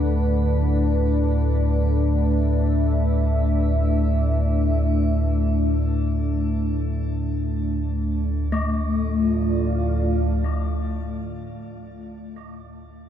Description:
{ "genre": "dark ambient drone", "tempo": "free time", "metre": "none", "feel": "none", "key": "D minor", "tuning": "A4 = 439 Hz", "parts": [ { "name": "dark analog pad", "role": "sustained chords", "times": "0.0-12.2 s", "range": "A3 to F#5", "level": "-25 LUFS", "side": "left 1 dB", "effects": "chorus, shimmer reverb" }, { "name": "deep rumbling drone", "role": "drone", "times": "0.0-11.6 s", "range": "D2 to A2", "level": "-22 LUFS", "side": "equal", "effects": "built-in reverb" }, { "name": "gamelan-type bronze metallophone", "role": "arpeggios", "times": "8.5-11.6 s", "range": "A3", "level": "-29 LUFS", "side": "left 3 dB", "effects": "ping-pong delay, shimmer reverb" } ], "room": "wet cathedral reverb, RT60 6.4 s", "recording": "dark, warm production", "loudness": "-20 LUFS", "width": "side -10 dB against mid", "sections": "0.0-8.5 A section; 8.5-13.1 B section", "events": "none", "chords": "0.0 Bm7; 8.5 Dm", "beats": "free time" }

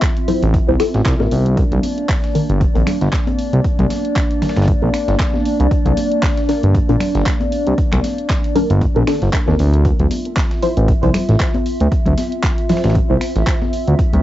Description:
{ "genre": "deep house", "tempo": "116 BPM", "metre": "4/4", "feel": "swing 56% on 16ths", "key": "unclear", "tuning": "A4 = 436 Hz", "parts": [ { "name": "warbly tape-like pad", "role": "sustained chords", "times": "0.0-14.2 s", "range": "Bb3 to E5", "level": "-22 LUFS", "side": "equal", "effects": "chorus, built-in reverb, sidechain pumping, cassette tape, plate reverb" }, { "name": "deep house drum kit", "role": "drums", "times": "0.0-14.2 s", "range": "finger snaps, handclaps, hi-hat", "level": "-26 LUFS", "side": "right 1 dB", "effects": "small room reverb, cassette tape" }, { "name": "dusty soul sampler-style drum kit", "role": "drums", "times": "0.0-14.1 s", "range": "hi-hat, snare drum", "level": "-36 LUFS", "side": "right 1 dB", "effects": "high-pass filter on hats, small room reverb, cassette tape, high-pass filter on snare" }, { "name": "electronic kick drum", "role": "drums", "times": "0.0-14.1 s", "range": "none", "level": "-18 LUFS", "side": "equal", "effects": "small room reverb, cassette tape" }, { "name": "filtered dub chord stab", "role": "stabs", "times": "0.3-13.3 s", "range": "Eb3 to C5", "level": "-20 LUFS", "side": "left 1 dB", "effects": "phaser, analog chorus, sidechain pumping, cassette tape, analog delay, plate reverb" }, { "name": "congas", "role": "percussion", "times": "0.3-14.2 s", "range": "none", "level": "-24 LUFS", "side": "left 2 dB", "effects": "none" }, { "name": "smooth synth bass", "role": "bass", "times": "0.4-14.2 s", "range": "G1 to Eb2", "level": "-14 LUFS", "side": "equal", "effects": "sidechain pumping" } ], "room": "light reverb", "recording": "home recording on cassette, nothing above 7.7 kHz", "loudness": "-14 LUFS", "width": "side -14 dB against mid", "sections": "0.0-14.2 A section", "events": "filter sweep on synth stab 0.0-14.2", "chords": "0.0 Dm9 (rootless); 1.3 Cm9; 9.8 Dm9", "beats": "0.02 0.54 1.06 | 1.57 2.09 2.61 3.13 | 3.64 4.16 4.68 5.20 | 5.71 6.23 6.75 7.26 | 7.78 8.30 8.81 9.33 | 9.85 10.37 10.88 11.40 | 11.92 12.44 12.95 13.47 | 13.99" }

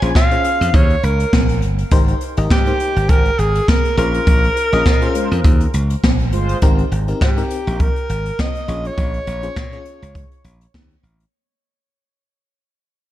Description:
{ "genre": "early-eighties boogie funk", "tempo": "102 BPM", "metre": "4/4", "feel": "swing 56% on 16ths", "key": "Bb dorian", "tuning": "A4 = 440 Hz", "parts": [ { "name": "FM electric piano with tremolo", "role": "accompaniment", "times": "0.0-10.3 s", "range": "C4 to Eb5", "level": "-25 LUFS", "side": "left 4 dB", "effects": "slapback echo" }, { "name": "slap bass", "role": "bass", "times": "0.0-11.2 s", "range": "G1 to Bb2", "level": "-19 LUFS", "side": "equal", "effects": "none" }, { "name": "jazz brush drum kit", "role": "drums", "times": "0.0-11.3 s", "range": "hi-hat, kick drum, snare drum", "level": "-16 LUFS", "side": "equal", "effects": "none" }, { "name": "breathy alto saxophone", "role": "melody", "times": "0.2-10.8 s", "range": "G4 to F5", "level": "-21 LUFS", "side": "right 1 dB", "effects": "slapback echo, tape echo" }, { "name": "mellow synth brass", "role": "second line", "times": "5.1-6.6 s", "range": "Ab3 to C5", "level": "-25 LUFS", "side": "equal", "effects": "chorus, slapback echo" } ], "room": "light reverb, studio ambience", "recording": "none", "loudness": "-14 LUFS", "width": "side -14 dB against mid", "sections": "0.0-6.6 A section; 6.6-11.3 B section", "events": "band accent 4.3-6.6; fade-out 6.6-11.3", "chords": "0.0 Bbm9; 1.9 Abmaj9; 4.0 Bbm9; 6.6 Abmaj9; 8.7 Bbm7", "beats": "0.15 0.74 1.33 | 1.92 2.50 3.09 3.68 | 4.27 4.86 5.45 6.03 | 6.62 7.21 7.80 8.39 | 8.97 9.56 10.15 10.74" }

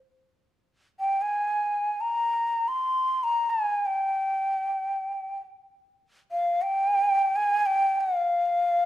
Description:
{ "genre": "Arabic maqam ensemble", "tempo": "free time", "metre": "none", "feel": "none", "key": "unclear", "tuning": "A4 = 438 Hz", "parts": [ { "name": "breathy ney", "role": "solo", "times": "1.0-8.9 s", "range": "F5 to C6", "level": "-23 LUFS", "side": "equal", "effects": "none" } ], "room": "moderate recital hall reverb, RT60 1.5 s", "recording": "minimal, uncompressed stereo recording", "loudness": "-23 LUFS", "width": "side -13 dB against mid", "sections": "0.4-8.9 A section", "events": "none", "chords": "none", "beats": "free time" }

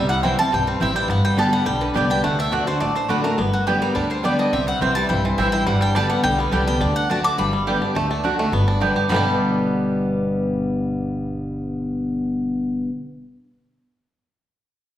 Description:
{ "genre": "bluegrass", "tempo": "210 BPM", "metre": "4/4", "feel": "straight", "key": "G major", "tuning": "A4 = 440 Hz", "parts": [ { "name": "mandolin", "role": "melody", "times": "0.0-12.8 s", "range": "F#4 to D6", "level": "-23 LUFS", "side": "left 1 dB", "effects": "none" }, { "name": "picked steel-string acoustic guitar", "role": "accompaniment", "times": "0.0-12.9 s", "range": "G2 to G4", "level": "-22 LUFS", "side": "left 1 dB", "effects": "none" }, { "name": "bluegrass banjo", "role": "arpeggios", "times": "0.0-12.9 s", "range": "D3 to G4", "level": "-25 LUFS", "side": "right 2 dB", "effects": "none" }, { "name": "upright bass", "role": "bass", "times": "0.0-12.8 s", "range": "G1 to D2", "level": "-27 LUFS", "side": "equal", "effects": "none" }, { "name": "mandolin", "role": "stabs", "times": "0.2-12.9 s", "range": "A3 to G5", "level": "-28 LUFS", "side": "right 4 dB", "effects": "none" } ], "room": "wet recital hall reverb, RT60 1.2 s", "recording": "recorded in a church or concert hall", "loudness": "-18 LUFS", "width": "side -12 dB against mid", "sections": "0.0-8.0 A section; 8.0-9.1 B section; 9.1-11.4 C section", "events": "none", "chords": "0.0 C; 1.1 G; 2.2 D; 3.4 G; 4.5 C; 5.7 G; 6.8 D; 7.4 G; 8.0 D; 8.5 G", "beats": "0.23 0.52 0.81 | 1.09 1.38 1.66 1.95 | 2.24 2.52 2.81 3.10 | 3.38 3.67 3.95 4.24 | 4.53 4.81 5.10 5.38 | 5.67 5.95 6.24 6.53 | 6.81 7.10 7.38 7.67 | 7.95 8.24 8.53 8.81 | 9.10 9.38 9.67 9.96 | 10.24 10.53 10.81 11.10" }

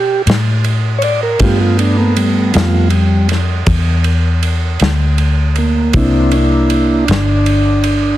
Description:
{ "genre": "slow blues", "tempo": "53 BPM (dotted quarters)", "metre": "12/8", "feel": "straight", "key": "unclear", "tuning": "A4 = 440 Hz", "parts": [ { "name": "mellow tonewheel organ", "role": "sustained chords", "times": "0.0-8.2 s", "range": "F#3 to D5", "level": "-14 LUFS", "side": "right 1 dB", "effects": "slow rotary speaker" }, { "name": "vintage muted fingered electric bass", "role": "bass", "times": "0.0-8.2 s", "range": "G1 to B2", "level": "-14 LUFS", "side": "left 1 dB", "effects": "none" }, { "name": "natural country drum kit", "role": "drums", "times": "0.3-8.0 s", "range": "kick drum, ride cymbal, snare drum", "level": "-18 LUFS", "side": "equal", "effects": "none" } ], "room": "light reverb, studio ambience", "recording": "heavily compressed radio sound", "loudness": "-11 LUFS", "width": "side -14 dB against mid", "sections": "0.0-8.2 A section", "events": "tonewheel organ solo 0.0-8.2", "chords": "0.0 G7; 6.0 C7", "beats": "0.27 | 1.41 2.54 3.68 4.81 | 5.95 7.09" }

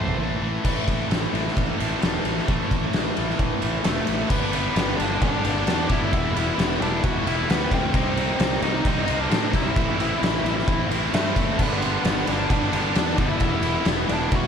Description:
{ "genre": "quiet-loud alternative rock", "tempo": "132 BPM", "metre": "4/4", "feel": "straight", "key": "G major from 4.3 s", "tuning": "A4 = 440 Hz", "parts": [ { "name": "octave-fuzz lead guitar", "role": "melody", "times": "0.0-0.2, 3.8-14.5 s", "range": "A3 to F#5", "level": "-28 LUFS", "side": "left 1 dB", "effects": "distortion, slapback echo" }, { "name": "distorted electric guitar", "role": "riff", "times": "0.0-14.5 s", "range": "G2 to G4", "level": "-29 LUFS", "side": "left 11 dB", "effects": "overdrive, slapback echo" }, { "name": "heavy high-gain guitar", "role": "riff", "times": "0.0-14.5 s", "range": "G2 to G4", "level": "-30 LUFS", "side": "right 9 dB", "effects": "distortion, slapback echo" }, { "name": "fuzz fingered electric bass", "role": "bass", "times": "0.0-14.5 s", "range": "E1 to A2", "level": "-28 LUFS", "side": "equal", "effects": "overdrive" }, { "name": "oversized low-tuned drum kit", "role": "drums", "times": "0.1-14.4 s", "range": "crash cymbal, kick drum, ride cymbal, snare drum, toms", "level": "-23 LUFS", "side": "equal", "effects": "none" } ], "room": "light reverb", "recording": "none", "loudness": "-20 LUFS", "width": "side -7 dB against mid", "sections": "0.7-4.3 A section; 4.3-14.5 B section", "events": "none", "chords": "0.0 A5; 4.3 G; 6.1 Em; 7.9 Cm; 9.8 Am; 11.6 G; 13.4 Em", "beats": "0.20 | 0.66 1.11 1.57 2.02 | 2.48 2.94 3.39 3.85 | 4.30 4.76 5.21 5.67 | 6.12 6.58 7.03 7.49 | 7.94 8.40 8.85 9.31 | 9.76 10.22 10.68 11.13 | 11.59 12.04 12.50 12.95 | 13.41 13.87 14.32" }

